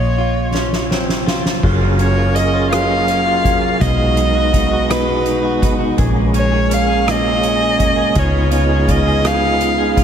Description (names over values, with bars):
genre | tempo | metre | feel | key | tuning
six-eight pop ballad | 55 BPM (dotted quarters) | 6/8 | straight | unclear | A4 = 440 Hz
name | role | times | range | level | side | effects
warm violin | melody | 0.0-10.0 s | Cb5 to F5 | -19 LUFS | equal | tape echo
direct-recorded clean electric guitar | accompaniment | 0.0-10.0 s | Bb2 to Ab4 | -21 LUFS | equal | double-tracked left and right
vintage muted fingered electric bass | bass | 0.0-10.0 s | Gb1 to Db2 | -19 LUFS | equal | none
soft-mallet drum kit | drums | 0.5-10.0 s | crash cymbal, hi-hat, kick drum, rim click, snare drum | -21 LUFS | equal | none
tonewheel organ | sustained chords | 1.6-10.0 s | Db3 to Bb4 | -19 LUFS | right 2 dB | chorus vibrato, stopped rotary speaker
room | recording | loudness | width
moderate huge ambient reverb, RT60 5.2 s | dreamy mix soaked in reverb | -13 LUFS | side -8 dB against mid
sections
0.0-1.6 A section; 1.6-10.0 B section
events
drum fill 0.5-1.6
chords
0.0 Bbmadd9; 1.6 Gbmaj7; 3.8 Cb6; 6.0 Bbm7; 8.2 Db7